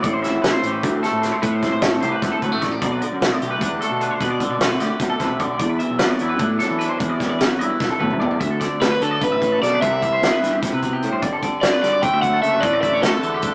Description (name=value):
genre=math rock and midwest emo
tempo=300 BPM (eighths)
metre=7/8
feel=straight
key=D major from 8.4 s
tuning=A4 = 440 Hz
part: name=twangy electric guitar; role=accompaniment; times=0.0-13.5 s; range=D2 to G4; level=-27 LUFS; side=equal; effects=none
part: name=twelve-string electric guitar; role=arpeggios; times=0.0-13.5 s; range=G4 to E5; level=-28 LUFS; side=equal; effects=spring reverb
part: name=fuzz fingered electric bass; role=bass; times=0.0-13.4 s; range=F#1 to E3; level=-28 LUFS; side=equal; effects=overdrive
part: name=loose indie drum kit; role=drums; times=0.0-13.5 s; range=hi-hat, kick drum, snare drum, toms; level=-25 LUFS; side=equal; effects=none
part: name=overdriven semi-hollow guitar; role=melody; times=8.8-13.5 s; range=A4 to G5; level=-21 LUFS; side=equal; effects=none
room=moderate stone room reverb, RT60 1.0 s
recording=rough rehearsal-room recording, small speaker sound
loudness=-20 LUFS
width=mono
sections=0.0-8.4 A section; 8.4-13.5 B section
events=drum fill 7.8-8.4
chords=0.0 Am7; 2.8 Bm7; 8.4 D69; 9.8 Cmaj7; 11.2 Gmaj9; 12.6 A7sus4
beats=| 0.04 0.23 0.43 0.63 0.83 1.03 1.23 | 1.43 1.63 1.83 2.03 2.23 2.42 2.62 | 2.82 3.02 3.22 3.42 3.62 3.81 4.01 | 4.21 4.41 4.61 4.81 5.01 5.21 5.41 | 5.61 5.81 6.01 6.21 6.41 6.61 6.81 | 7.01 7.21 7.41 7.61 7.81 8.01 8.21 | 8.41 8.61 8.81 9.01 9.21 9.41 9.62 | 9.82 10.02 10.22 10.42 10.62 10.82 11.02 | 11.22 11.43 11.63 11.83 12.03 12.23 12.43 | 12.63 12.83 13.04 13.23 13.44